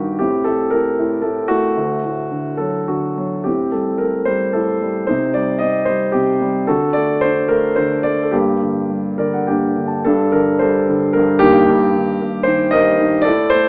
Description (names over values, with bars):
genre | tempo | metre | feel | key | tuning
classical, lyrical solo piano | 101-120 BPM | 3/4 | rubato | G harmonic minor | A4 = 440 Hz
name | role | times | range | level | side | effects
dark baby grand piano | solo | 0.0-13.7 s | D2 to A5 | -17 LUFS | equal | none
room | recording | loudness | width
moderate recital hall reverb, RT60 1.4 s | AM radio sound | -17 LUFS | mono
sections
0.0-10.1 A section; 10.1-13.7 A section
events
grand piano fill 8.9-10.1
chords
0.2 Am7; 1.8 D; 3.5 Am7; 5.1 Cm; 6.7 D; 8.3 Gm; 10.1 Gmadd9; 11.7 Cm7/G